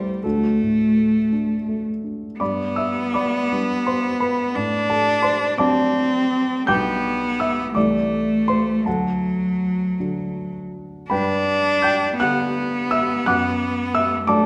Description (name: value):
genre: classical, romantic duo for cello and grand piano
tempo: 55 BPM (dotted quarters)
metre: 6/8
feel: uneven beats, rubato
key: G major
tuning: A4 = 436 Hz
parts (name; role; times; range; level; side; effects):
- clear cello; melody; 0.0-14.5 s; F#3 to D4; -23 LUFS; equal; none
- dark baby grand piano; accompaniment; 0.0-14.5 s; B1 to G6; -25 LUFS; equal; none
room: wet recital hall reverb, RT60 1.3 s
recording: none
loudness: -21 LUFS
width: mono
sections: 0.0-2.4 A section; 2.4-14.5 B section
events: none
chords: 0.2 D; 2.4 G; 4.6 D7/A; 6.7 G/B; 7.8 Am/C; 8.9 D; 11.1 G; 13.3 D/F#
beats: | 0.24 1.31 | 2.40 3.51 | 4.56 5.58 | 6.69 7.76 | 8.86 10.00 | 11.11 12.20 | 13.27 14.28